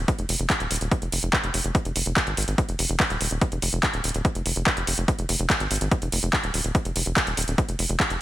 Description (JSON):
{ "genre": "psychedelic trance", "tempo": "144 BPM", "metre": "4/4", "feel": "straight", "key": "unclear", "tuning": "A4 = 441 Hz", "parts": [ { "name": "tight sequencer bass", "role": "bass", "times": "0.0-8.2 s", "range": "Eb1 to Ab1", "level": "-27 LUFS", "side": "equal", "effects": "tube saturation" }, { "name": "big-room dance drum kit", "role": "drums", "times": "0.1-8.2 s", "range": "handclaps, hi-hat", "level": "-25 LUFS", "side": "equal", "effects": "overdrive, small room ambience" }, { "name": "electronic kick drum", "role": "drums", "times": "0.1-8.1 s", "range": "none", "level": "-22 LUFS", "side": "equal", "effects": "small room ambience" } ], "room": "light reverb, digital ambience", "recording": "none", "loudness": "-22 LUFS", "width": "side -15 dB against mid", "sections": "0.0-8.2 A section", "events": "none", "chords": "none", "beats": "0.08 0.50 | 0.92 1.33 1.75 2.17 | 2.58 3.00 3.42 3.83 | 4.25 4.67 5.08 5.50 | 5.92 6.33 6.75 7.17 | 7.58 8.00" }